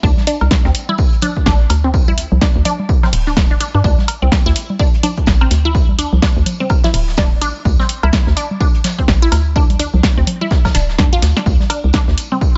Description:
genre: minimal techno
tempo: 126 BPM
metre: 4/4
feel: swing 60% on 16ths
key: D minor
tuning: A4 = 442 Hz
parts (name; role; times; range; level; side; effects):
- resonant blip pluck; riff; 0.0-12.4 s; C4 to F4; -24 LUFS; equal; phaser, sidechain pumping, dub echo
- hollow knocking FM bass; bass; 0.0-12.2 s; D1 to G2; -18 LUFS; equal; sidechain pumping
- electronic kick drum; drums; 0.0-12.5 s; none; -16 LUFS; equal; none
- vintage brush drum kit; drums; 0.0-12.6 s; hi-hat, snare drum, tambourine; -33 LUFS; equal; sidechain pumping on hats, high-pass filter on hats, high-pass filter on snare, sidechain pumping on perc, high-pass filter on perc, high-pass filter on room
- congas and cowbell; percussion; 0.2-12.4 s; none; -25 LUFS; equal; overdrive, digital delay
- punchy analog drum machine; drums; 0.3-12.3 s; hi-hat, snare drum; -21 LUFS; equal; none
room: studio reverb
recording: nothing above 7.9 kHz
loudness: -14 LUFS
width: mono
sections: 0.0-12.6 A section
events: none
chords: 0.0 D5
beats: | 0.03 0.51 0.98 1.46 | 1.94 2.41 2.89 3.37 | 3.84 4.32 4.79 5.27 | 5.75 6.22 6.70 7.17 | 7.65 8.13 8.60 9.08 | 9.56 10.03 10.51 10.98 | 11.46 11.94 12.41

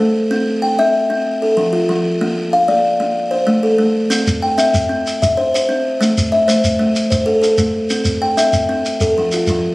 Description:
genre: southern african traditional, mbira-style interlocking cycle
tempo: 126 BPM (dotted quarters)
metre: 12/8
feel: straight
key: C mixolydian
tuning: A4 = 440 Hz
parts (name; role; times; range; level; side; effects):
- buzzing kalimba; arpeggios; 0.0-9.7 s; F3 to G5; -14 LUFS; equal; none
- shekere; percussion; 4.1-9.6 s; none; -20 LUFS; equal; none
room: moderate small room reverb, RT60 0.6 s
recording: recorded on a phone in the room, studio reverb, compression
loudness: -13 LUFS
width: side -21 dB against mid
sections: 0.0-4.1 A section; 4.1-9.7 A section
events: none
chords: 0.3 C; 1.3 F; 2.2 Bb; 3.2 Am; 4.1 C; 6.0 Am; 7.9 C; 8.8 F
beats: | 0.30 0.78 1.25 1.73 | 2.20 2.68 3.15 3.63 | 4.11 4.58 5.05 5.53 | 6.00 6.48 6.95 7.43 | 7.90 8.38 8.85 9.32

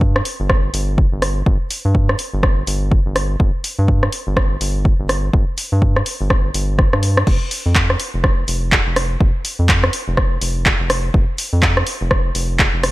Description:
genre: deep house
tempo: 124 BPM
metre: 4/4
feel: swing 60% on 16ths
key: unclear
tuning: A4 = 440 Hz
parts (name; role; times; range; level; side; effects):
- round analog bass; bass; 0.0-12.9 s; F1 to G2; -18 LUFS; equal; tube saturation, sidechain pumping
- electronic kick drum; drums; 0.0-12.7 s; none; -16 LUFS; equal; none
- punchy analog drum machine; drums; 0.2-12.9 s; crash cymbal, handclaps, hi-hat, rim click; -19 LUFS; equal; none
room: digital ambience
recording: none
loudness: -15 LUFS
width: side -18 dB against mid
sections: 0.0-12.9 A section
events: drum fill 6.8-7.3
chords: none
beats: 0.01 0.50 0.98 | 1.46 1.95 2.43 2.92 | 3.40 3.88 4.37 4.85 | 5.33 5.82 6.30 6.79 | 7.27 7.75 8.24 8.72 | 9.21 9.69 10.17 10.66 | 11.14 11.63 12.11 12.59

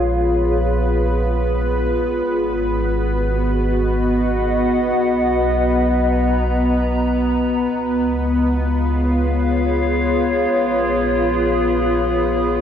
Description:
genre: ambient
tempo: free time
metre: none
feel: none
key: unclear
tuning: A4 = 440 Hz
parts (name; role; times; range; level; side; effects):
- warbly tape-like pad; sustained chords; 0.0-12.6 s; B3 to A#5; -18 LUFS; left 1 dB; chorus, built-in reverb
- warm sub bass; bass; 0.0-12.6 s; G#1 to C#2; -22 LUFS; equal; none
- bowed-like drone; drone; 0.0-12.6 s; B3 to B4; -23 LUFS; equal; built-in reverb
room: wet concert hall reverb, RT60 2.3 s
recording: none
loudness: -16 LUFS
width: side -9 dB against mid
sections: 0.0-12.6 A section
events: fade-out on sub bass 0.0-12.6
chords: 0.0 A#m7; 2.3 G#m7; 5.0 Bmaj7; 7.7 C#7; 10.5 A#m7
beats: free time

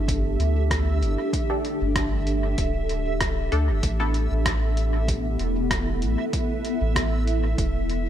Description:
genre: ambient dub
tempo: 96 BPM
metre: 4/4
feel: swing 54% on 16ths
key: unclear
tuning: A4 = 439 Hz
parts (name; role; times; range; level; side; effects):
- granular cloud pad; sustained chords; 0.0-8.1 s; B3 to A4; -28 LUFS; equal; built-in reverb
- soft dub sub bass; bass; 0.0-8.1 s; D1 to D2; -24 LUFS; equal; none
- backwards swelling texture; texture; 0.0-8.1 s; E5; -34 LUFS; right 4 dB; built-in reverb
- electronic kick drum; drums; 0.1-7.7 s; none; -29 LUFS; equal; none
- lo-fi sampler-style drum kit; drums; 0.1-8.0 s; hi-hat, rim click; -30 LUFS; equal; dub echo
- filtered dub chord stab; stabs; 1.5-4.1 s; B3 to A4; -32 LUFS; left 1 dB; phaser, wide subtle chorus, dub echo
room: light reverb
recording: none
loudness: -22 LUFS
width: side -10 dB against mid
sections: 0.0-8.1 A section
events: none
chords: 0.0 Gsus2; 3.8 Asus2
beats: 0.08 0.71 | 1.33 1.96 2.58 3.21 | 3.83 4.46 5.08 5.71 | 6.33 6.96 7.58

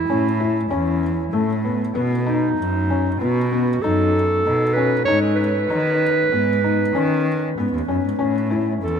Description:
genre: contemporary instrumental, chamber music in an uneven meter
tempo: 96 BPM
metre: 5/4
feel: straight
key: A lydian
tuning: A4 = 439 Hz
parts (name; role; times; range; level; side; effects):
- warm clarinet; melody; 0.0-9.0 s; D#4 to C#5; -22 LUFS; right 4 dB; none
- felt-muted upright piano; arpeggios; 0.1-8.8 s; A3 to E4; -22 LUFS; left 4 dB; none
- warm cello; bass; 0.1-9.0 s; D#2 to D#3; -23 LUFS; equal; none
room: wet cathedral reverb, RT60 6.6 s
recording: in a vast, echoing space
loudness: -17 LUFS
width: side -7 dB against mid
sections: 0.0-9.0 A section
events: none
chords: 0.0 A; 2.0 B7; 5.1 G#m; 8.2 A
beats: 0.10 0.72 1.34 | 1.96 2.59 3.21 3.83 4.46 | 5.08 5.70 6.33 6.95 7.58 | 8.20 8.82

